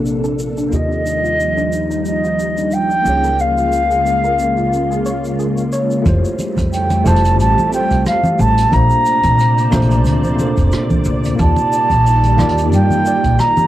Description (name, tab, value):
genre	sunset chillout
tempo	90 BPM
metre	4/4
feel	swing 55% on 16ths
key	unclear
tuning	A4 = 440 Hz
part	mellow tine electric piano	accompaniment	0.0-13.7 s	A3 to Eb5	-22 LUFS	equal	medium stereo tremolo, auto-pan, vintage 12-bit sampler grit, tape echo
part	soft string machine	sustained chords	0.0-13.7 s	Bb2 to D5	-20 LUFS	equal	ensemble chorus, vintage 12-bit sampler grit
part	soft round pluck	arpeggios	0.0-5.9 s	D4 to Db5	-27 LUFS	left 1 dB	lush chorus, tape echo
part	upright bass	bass	0.0-13.4 s	F1 to Bb2	-18 LUFS	equal	none
part	jazz brush drum kit	drums	0.1-13.7 s	hi-hat, rim click, shaker	-32 LUFS	equal	cassette tape
part	mellow baroque flute	melody	0.7-13.7 s	Eb5 to Bb5	-16 LUFS	right 1 dB	analog delay
part	electronic kick drum	drums	6.1-13.4 s	none	-20 LUFS	equal	cassette tape
part	congas	percussion	6.1-13.7 s	none	-20 LUFS	equal	none
room	moderate booth ambience, RT60 0.2 s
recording	home recording on cassette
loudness	-12 LUFS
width	side -13 dB against mid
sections	0.0-6.1 A section; 6.1-13.7 B section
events	filter sweep on string machine 0.0-6.1; filter sweep on synth pluck 0.0-6.1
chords	0.0 Bbmaj9; 0.7 Ebmaj9; 3.1 Db6; 6.1 Fmaj9; 8.7 Bbmaj9; 11.4 Ebmaj9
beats	0.06 | 0.72 1.39 2.06 2.73 | 3.39 4.06 4.72 5.39 | 6.06 6.72 7.39 8.06 | 8.72 9.39 10.06 10.72 | 11.39 12.06 12.72 13.39